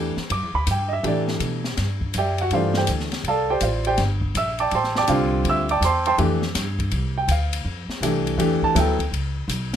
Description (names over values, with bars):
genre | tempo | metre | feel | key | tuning
modal jazz | 163 BPM | 4/4 | swing 65% on 8ths | unclear | A4 = 440 Hz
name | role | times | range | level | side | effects
warm baby grand piano | accompaniment | 0.0-9.1 s | D3 to E6 | -21 LUFS | right 1 dB | none
upright bass | bass | 0.0-9.8 s | G1 to B2 | -25 LUFS | equal | none
open jazz drum kit | drums | 0.2-9.8 s | hi-hat, kick drum, ride cymbal, snare drum | -29 LUFS | left 3 dB | none
room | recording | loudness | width
light reverb | minimal, uncompressed stereo recording | -20 LUFS | side -9 dB against mid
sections
0.0-9.8 A section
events
none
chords
0.0 A9sus4; 2.5 G9sus4; 8.4 A9sus4